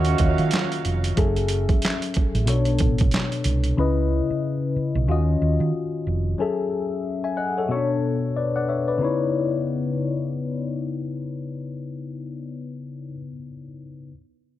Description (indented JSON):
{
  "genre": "R&B, neo-soul",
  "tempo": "92 BPM",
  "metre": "4/4",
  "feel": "swing 59% on 16ths",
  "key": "unclear",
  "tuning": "A4 = 440 Hz",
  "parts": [
    { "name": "tine electric piano", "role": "accompaniment", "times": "0.0-14.1 s", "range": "B2 to G#5", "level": "-24 LUFS", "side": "left 4 dB", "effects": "phaser" },
    { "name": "dark studio string section", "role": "sustained chords", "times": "0.0-1.2 s", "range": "C#3 to E#5", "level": "-33 LUFS", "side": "right 6 dB", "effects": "none" },
    { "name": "mellow horn section", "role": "stabs", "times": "0.0-0.8 s", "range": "A#3 to F#4", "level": "-30 LUFS", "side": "right 11 dB", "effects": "tape echo" },
    { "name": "hollow-body short-scale fingered electric bass", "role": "bass", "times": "0.0-6.3 s", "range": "E#1 to D#3", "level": "-22 LUFS", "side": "right 1 dB", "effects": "none" },
    { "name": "boom bap sampler-style drum kit", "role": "drums", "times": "0.0-3.8 s", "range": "handclaps, hi-hat, kick drum, snare drum", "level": "-23 LUFS", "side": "right 2 dB", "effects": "overdrive" }
  ],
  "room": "light reverb",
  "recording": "dark, warm production",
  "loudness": "-21 LUFS",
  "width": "side -13 dB against mid",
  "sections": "0.0-9.0 A section; 9.0-11.6 B section",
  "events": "none",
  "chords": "0.0 D#m9; 1.2 F#m9; 2.5 Bm9; 3.8 C#m9; 5.1 D#m9; 6.4 F#m9; 7.7 Bm9; 9.0 C#m9"
}